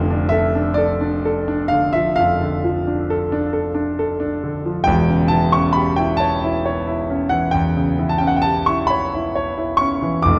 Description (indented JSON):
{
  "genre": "classical, romantic nocturne for solo piano",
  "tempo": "45 BPM (dotted quarters)",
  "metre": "12/8",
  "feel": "rubato",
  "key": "unclear",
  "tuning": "A4 = 440 Hz",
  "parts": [
    { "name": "warm concert grand piano", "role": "solo", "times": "0.0-10.4 s", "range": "E1 to D6", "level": "-19 LUFS", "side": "equal", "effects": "none" }
  ],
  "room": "moderate concert hall reverb, RT60 1.8 s",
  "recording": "dark, warm production",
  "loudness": "-19 LUFS",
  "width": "mono",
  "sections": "0.0-10.4 A section",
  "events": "none",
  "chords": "0.0 Dm/F; 4.9 C#dim/E"
}